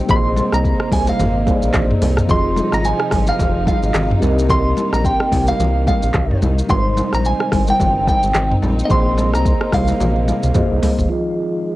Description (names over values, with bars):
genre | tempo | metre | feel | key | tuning
afrobeats | 109 BPM | 4/4 | swing 58% on 16ths | F minor | A4 = 439 Hz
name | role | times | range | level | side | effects
mellow tine electric piano | accompaniment | 0.0-11.8 s | F3 to Eb5 | -22 LUFS | equal | medium stereo tremolo, low-pass filter, cassette tape
warm studio string section | sustained chords | 0.0-11.8 s | C3 to F4 | -26 LUFS | equal | low-pass filter, cassette tape
clean electric guitar | melody | 0.1-10.8 s | Eb5 to C6 | -21 LUFS | right 1 dB | tremolo, cassette tape, tape echo
round analog bass | bass | 0.1-11.1 s | F1 to C2 | -19 LUFS | equal | none
afro-pop drum kit | drums | 0.1-11.1 s | handclaps, hi-hat, kick drum, rim click, shaker, toms | -19 LUFS | equal | cassette tape
congas | percussion | 0.1-11.0 s | none | -24 LUFS | left 3 dB | none
room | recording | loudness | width
light reverb | home recording on cassette | -14 LUFS | side -17 dB against mid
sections
0.0-11.1 A section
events
drum fill 10.0-11.1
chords
0.1 Bb9sus4; 2.3 Fm7; 4.2 Cm7; 6.7 Abmaj7; 11.1 Fm7